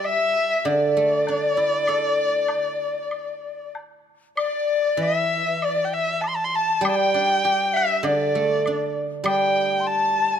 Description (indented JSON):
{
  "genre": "chinese traditional, Chinese chamber ensemble",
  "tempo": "98 BPM",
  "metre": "4/4",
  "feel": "rubato",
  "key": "unclear",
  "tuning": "A4 = 440 Hz",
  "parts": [
    { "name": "warm erhu", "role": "melody", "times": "0.0-10.4 s", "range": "D5 to C6", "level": "-23 LUFS", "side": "right 1 dB", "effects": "none" },
    { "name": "bright reedy large dizi", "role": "second line", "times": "0.0-10.4 s", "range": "D5 to C6", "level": "-25 LUFS", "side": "left 8 dB", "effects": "none" },
    { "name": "guzheng", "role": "accompaniment", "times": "0.0-10.4 s", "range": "D3 to A4", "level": "-25 LUFS", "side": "right 3 dB", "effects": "none" },
    { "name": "woodblock", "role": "percussion", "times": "0.0-9.4 s", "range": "none", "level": "-31 LUFS", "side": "left 1 dB", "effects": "none" }
  ],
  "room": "light reverb",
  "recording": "close, detailed microphones",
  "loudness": "-19 LUFS",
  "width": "side -8 dB against mid",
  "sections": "0.0-4.4 A section; 4.4-10.4 B section",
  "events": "none",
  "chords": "none"
}